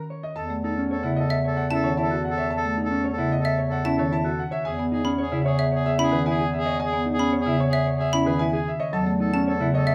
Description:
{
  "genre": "classical, minimalist pattern music",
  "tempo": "112 BPM",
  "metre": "4/4",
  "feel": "straight",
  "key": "unclear",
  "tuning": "A4 = 440 Hz",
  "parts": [
    { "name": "mellow electric guitar", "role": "arpeggios", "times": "0.1-9.9 s", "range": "C#4 to C#5", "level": "-31 LUFS", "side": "equal", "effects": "none" },
    { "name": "clear baby grand piano", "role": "melody", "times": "0.2-9.9 s", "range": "B4 to A5", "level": "-33 LUFS", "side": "equal", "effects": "none" },
    { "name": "clear oboe", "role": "second line", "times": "0.4-9.9 s", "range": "G#4 to A4", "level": "-32 LUFS", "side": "equal", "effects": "none" },
    { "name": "clear bass clarinet", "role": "bass", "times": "0.4-9.9 s", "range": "E2", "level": "-31 LUFS", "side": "equal", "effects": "none" },
    { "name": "marimba with medium mallets", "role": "accompaniment", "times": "0.5-9.8 s", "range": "C#3 to C#4", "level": "-28 LUFS", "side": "equal", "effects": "none" },
    { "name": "xylophone with wooden mallets", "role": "arpeggios", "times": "1.3-9.9 s", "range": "E5 to B5", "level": "-31 LUFS", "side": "equal", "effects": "none" }
  ],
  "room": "moderate recital hall reverb, RT60 1.5 s",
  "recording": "close, detailed microphones",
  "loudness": "-24 LUFS",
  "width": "mono",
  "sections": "0.4-9.9 A section",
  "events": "none",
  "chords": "0.4 F#m7/E; 4.7 Emaj7; 8.9 F#m7/E"
}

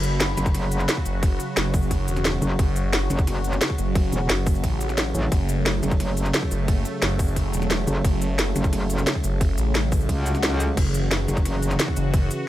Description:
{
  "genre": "dark technical drum and bass",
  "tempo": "176 BPM",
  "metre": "4/4",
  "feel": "straight",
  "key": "F# minor",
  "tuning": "A4 = 440 Hz",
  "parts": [
    { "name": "sweeping resonant pad", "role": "sustained chords", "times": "0.0-12.5 s", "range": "C#3 to F#4", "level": "-28 LUFS", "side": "right 1 dB", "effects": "chorus, sidechain pumping" },
    { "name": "phased detuned saw bass", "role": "bass", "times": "0.0-12.3 s", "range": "E1 to A1", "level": "-25 LUFS", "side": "equal", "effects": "phaser, overdrive" },
    { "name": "drum and bass drum kit", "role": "drums", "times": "0.0-12.4 s", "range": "cabasa, crash cymbal, hi-hat, ride cymbal, snare drum", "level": "-27 LUFS", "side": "equal", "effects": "none" },
    { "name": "metallic wobble bass", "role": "bass", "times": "0.4-11.8 s", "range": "E1 to C#2", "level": "-24 LUFS", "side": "equal", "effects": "distortion, chorus" },
    { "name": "electronic kick drum", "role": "drums", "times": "0.5-12.2 s", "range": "none", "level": "-22 LUFS", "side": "equal", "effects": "overdrive" },
    { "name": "swell", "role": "sound effects", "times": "10.2-10.8 s", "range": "none", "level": "-33 LUFS", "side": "left 4 dB", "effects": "none" }
  ],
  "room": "digital ambience",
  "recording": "none",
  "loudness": "-20 LUFS",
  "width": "side -14 dB against mid",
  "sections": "0.0-12.5 A section",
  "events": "swell 10.2-10.8",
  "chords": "0.0 F#5"
}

